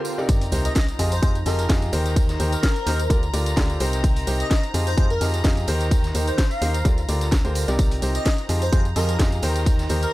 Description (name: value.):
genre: piano house.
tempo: 128 BPM.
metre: 4/4.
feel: swing 54% on 16ths.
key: C minor.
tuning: A4 = 439 Hz.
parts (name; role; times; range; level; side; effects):
clear studio violin section; sustained chords; 0.0-10.1 s; F5 to Bb6; -34 LUFS; left 2 dB; vintage 12-bit sampler grit, sidechain pumping.
bright upright piano; riff; 0.0-10.1 s; C3 to Eb5; -27 LUFS; equal; sidechain pumping, tape echo.
tambourine; percussion; 0.0-10.1 s; none; -38 LUFS; right 7 dB; none.
swell and sub drop; sound effects; 0.0-2.2 s; none; -32 LUFS; equal; none.
airy breathy pad; texture; 0.0-10.1 s; D3 to Bb5; -36 LUFS; right 2 dB; chorus, phaser, sidechain pumping.
electronic kick drum; drums; 0.3-9.8 s; none; -20 LUFS; equal; none.
house drum kit; drums; 0.3-10.1 s; hi-hat, snare drum, tambourine; -30 LUFS; equal; low-pass filter on hats, low-pass filter on perc, low-pass filter on snare, low-pass filter on room.
street-band drum kit; drums; 0.3-10.0 s; hi-hat, snare drum, tambourine; -40 LUFS; equal; none.
organ-like FM bass; bass; 0.5-10.1 s; C2 to F2; -24 LUFS; equal; tube saturation, sidechain pumping.
airy dreamy lead; melody; 0.6-10.1 s; Bb4 to F5; -30 LUFS; left 1 dB; chorus, tape echo.
room: studio reverb.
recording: dry, gritty hardware recording.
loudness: -19 LUFS.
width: side -18 dB against mid.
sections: 0.3-10.1 A section.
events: swell 0.0; drop 0.3-10.1; impact 0.3-2.2.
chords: 0.0 Cm7; 1.0 Fm9; 1.9 Cm7/Eb; 3.1 Gm7/D; 4.0 Cm7; 4.7 Fm9; 5.7 Cm7/Eb; 6.9 Cm7; 8.5 Fm9; 9.4 Cm7/Eb.